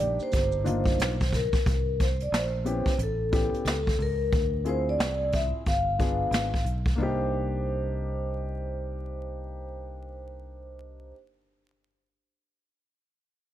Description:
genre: hip hop, jazz-hop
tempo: 90 BPM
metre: 4/4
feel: swing 62% on 16ths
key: C minor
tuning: A4 = 441 Hz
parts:
  - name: vibraphone with soft mallets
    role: melody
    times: 0.0-11.1 s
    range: A4 to F5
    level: -31 LUFS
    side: equal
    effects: none
  - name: dark grand piano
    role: accompaniment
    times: 0.0-11.1 s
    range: Bb3 to Ab4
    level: -34 LUFS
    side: left 4 dB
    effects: none
  - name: fingered electric bass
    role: bass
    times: 0.0-11.1 s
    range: G1 to D2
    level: -31 LUFS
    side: equal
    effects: none
  - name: maracas and congas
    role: percussion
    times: 0.2-1.6 s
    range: none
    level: -37 LUFS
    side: right 3 dB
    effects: none
  - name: jazz brush drum kit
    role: drums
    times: 0.3-7.0 s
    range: hi-hat, kick drum, snare drum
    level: -28 LUFS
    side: equal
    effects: none
room: small room ambience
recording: vinyl crackle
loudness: -25 LUFS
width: side -12 dB against mid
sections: 0.0-1.7 A section; 1.7-7.0 B section; 7.0-9.7 C section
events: none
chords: 0.0 Cm9; 1.7 C5; 3.0 A7; 4.3 Dm7b5; 5.7 G7b9; 7.0 Cm9

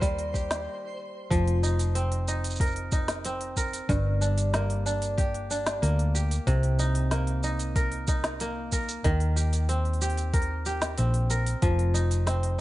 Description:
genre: folktronica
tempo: 93 BPM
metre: 4/4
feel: straight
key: unclear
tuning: A4 = 439 Hz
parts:
  - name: kora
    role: arpeggios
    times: 0.0-12.6 s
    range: G2 to C5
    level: -30 LUFS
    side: equal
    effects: tape echo
  - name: hollow-body short-scale fingered electric bass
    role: bass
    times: 0.0-12.6 s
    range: F1 to Eb2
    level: -26 LUFS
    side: equal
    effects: none
  - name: electronic kick drum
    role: drums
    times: 0.0-11.8 s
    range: none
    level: -27 LUFS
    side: equal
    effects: none
  - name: organic electronic drum kit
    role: drums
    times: 0.0-12.6 s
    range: hi-hat, shaker, snare drum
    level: -34 LUFS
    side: right 1 dB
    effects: none
  - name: twinkling granular texture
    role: texture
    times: 0.0-0.7 s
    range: C5 to C6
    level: -45 LUFS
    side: right 2 dB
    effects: built-in reverb
room: digital ambience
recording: nothing above 10.7 kHz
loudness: -24 LUFS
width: side -17 dB against mid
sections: 0.0-1.3 A section; 1.3-12.6 B section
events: stop 0.7-1.3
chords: 0.0 Eb6; 1.3 F7sus4; 3.9 Gm; 6.5 Cm7; 9.1 Eb6; 11.6 F7sus4

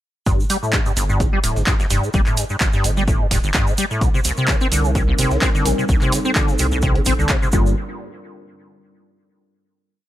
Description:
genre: acid house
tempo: 128 BPM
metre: 4/4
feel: swing 54% on 16ths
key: G minor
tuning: A4 = 439 Hz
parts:
  - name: acid bass, square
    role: riff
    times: 0.3-7.7 s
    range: G1 to C4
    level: -21 LUFS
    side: equal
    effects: overdrive, ensemble chorus, vintage 12-bit sampler grit, tape echo
  - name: saturated sub bass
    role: bass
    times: 0.3-7.7 s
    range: D1 to C2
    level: -22 LUFS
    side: equal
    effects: sidechain pumping
  - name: breakbeat sampler-style drum kit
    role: drums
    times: 0.3-7.4 s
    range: hi-hat, snare drum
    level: -34 LUFS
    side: right 1 dB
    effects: none
  - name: electronic kick drum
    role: drums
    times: 0.3-7.6 s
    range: none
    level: -19 LUFS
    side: equal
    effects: none
  - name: egg shaker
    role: percussion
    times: 0.3-7.7 s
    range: none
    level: -29 LUFS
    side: right 3 dB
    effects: none
  - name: punchy analog drum machine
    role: drums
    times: 0.5-7.4 s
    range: handclaps, hi-hat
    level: -24 LUFS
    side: equal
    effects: none
  - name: dark analog pad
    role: sustained chords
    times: 4.0-7.7 s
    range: G3 to Bb4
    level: -27 LUFS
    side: right 1 dB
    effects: wide subtle chorus, sidechain pumping
  - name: mellow tine electric piano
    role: stabs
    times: 5.7-7.7 s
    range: D3 to Bb4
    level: -27 LUFS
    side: left 4 dB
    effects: wide subtle chorus, tape echo
room: digital ambience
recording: none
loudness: -16 LUFS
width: side -13 dB against mid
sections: 0.3-7.8 groove; 7.8-9.6 final hit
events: none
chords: 0.3 G5; 4.0 Cm7; 7.5 Gm7; 7.8 N.C.

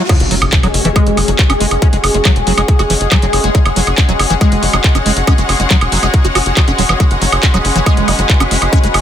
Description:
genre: psychedelic trance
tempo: 139 BPM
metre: 4/4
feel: straight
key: unclear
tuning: A4 = 439 Hz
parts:
  - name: liquid acid bass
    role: riff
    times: 0.0-8.9 s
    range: E3 to F#4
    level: -19 LUFS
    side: moving between left 3 dB and right 3 dB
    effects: chorus, auto-pan, sidechain pumping, dub echo
  - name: riser and impact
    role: sound effects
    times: 0.0-1.8 s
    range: none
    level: -21 LUFS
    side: left 1 dB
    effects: none
  - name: bubbling stepped-filter texture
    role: sustained chords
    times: 0.1-9.0 s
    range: G#3 to B4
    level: -18 LUFS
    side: left 1 dB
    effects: chorus, built-in reverb, sidechain pumping
  - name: drum and bass drum kit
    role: drums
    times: 0.1-9.0 s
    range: crash cymbal, handclaps, hi-hat, woodblock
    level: -16 LUFS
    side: right 2 dB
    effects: none
  - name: electronic kick drum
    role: drums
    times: 0.1-8.8 s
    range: none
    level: -11 LUFS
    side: equal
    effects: none
  - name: rich studio string section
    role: texture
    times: 0.1-9.0 s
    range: C#4 to F#5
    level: -21 LUFS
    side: left 4 dB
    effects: sidechain pumping
  - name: tight sequencer bass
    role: bass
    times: 0.2-9.0 s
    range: E1 to F#1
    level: -16 LUFS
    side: equal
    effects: none
room: digital ambience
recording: none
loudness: -9 LUFS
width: side -10 dB against mid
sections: 0.1-9.0 A section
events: drop 0.1-9.0; impact 0.1-1.8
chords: 0.1 F#5

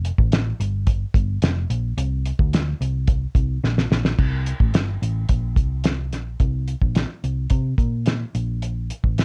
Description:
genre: indie pop, bedroom pop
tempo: 108 BPM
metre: 4/4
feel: straight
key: unclear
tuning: A4 = 440 Hz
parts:
  - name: hollow-body short-scale picked electric bass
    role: bass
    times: 0.0-9.2 s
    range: F1 to C3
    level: -25 LUFS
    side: equal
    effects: none
  - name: cloth-damped thuddy drum kit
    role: drums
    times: 0.0-9.2 s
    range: crash cymbal, hi-hat, kick drum, snare drum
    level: -22 LUFS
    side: equal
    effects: none
room: light reverb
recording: cassette tape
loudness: -22 LUFS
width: mono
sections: 0.0-4.2 A section; 4.2-6.4 B section; 6.4-9.2 C section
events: drum fill 3.6-4.2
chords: none

